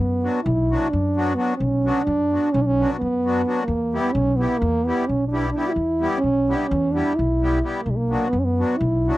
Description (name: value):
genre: balkan folk, Balkan wedding band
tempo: 259 BPM (eighths)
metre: 9/8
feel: straight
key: B harmonic minor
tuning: A4 = 439 Hz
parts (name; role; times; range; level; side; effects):
- mellow French horn; melody; 0.0-9.2 s; G3 to F#4; -21 LUFS; right 1 dB; none
- upright bass; bass; 0.0-9.1 s; B1 to F#2; -24 LUFS; left 1 dB; none
- accordion; accompaniment; 0.2-9.2 s; F#3 to G4; -26 LUFS; left 3 dB; light tremolo tuning
room: light reverb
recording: dry, close 1970s-style studio recording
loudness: -19 LUFS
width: side -16 dB against mid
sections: 0.0-9.2 A section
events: none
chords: 0.0 Bm; 3.7 Em; 7.9 Bm